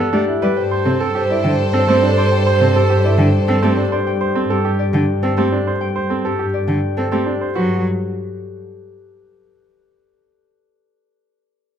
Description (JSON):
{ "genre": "classical, minimalist pattern music", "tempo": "103 BPM", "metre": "3/4", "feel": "straight", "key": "unclear", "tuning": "A4 = 439 Hz", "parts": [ { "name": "Celtic harp", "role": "melody", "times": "0.0-9.3 s", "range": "G4 to G5", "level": "-22 LUFS", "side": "left 8 dB", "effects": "none" }, { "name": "rich cello", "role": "accompaniment", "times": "0.0-7.8 s", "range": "C3 to C4", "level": "-20 LUFS", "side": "equal", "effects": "none" }, { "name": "bright grand piano", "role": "arpeggios", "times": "0.0-7.8 s", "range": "C4 to C5", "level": "-21 LUFS", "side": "right 6 dB", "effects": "none" }, { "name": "warm chamber double bass section", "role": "bass", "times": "0.0-7.8 s", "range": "G2", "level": "-20 LUFS", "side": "right 1 dB", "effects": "none" }, { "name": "mellow French horn", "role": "second line", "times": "0.6-3.8 s", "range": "C5", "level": "-22 LUFS", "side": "right 4 dB", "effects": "none" }, { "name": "clear chamber violin section", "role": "sustained chords", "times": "0.6-3.9 s", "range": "A4 to C5", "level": "-22 LUFS", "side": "equal", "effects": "none" } ], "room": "moderate recital hall reverb, RT60 1.7 s", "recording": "close, detailed microphones", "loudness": "-14 LUFS", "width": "side -9 dB against mid", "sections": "0.0-7.6 A section; 7.6-9.3 B section", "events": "none", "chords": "0.0 Gmaj9; 0.6 Am7/G; 7.6 Gmaj7sus2", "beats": "| 0.57 1.15 1.73 | 2.31 2.90 3.48 | 4.06 4.64 5.23 | 5.81 6.39 6.97 | 7.56 8.14 8.72" }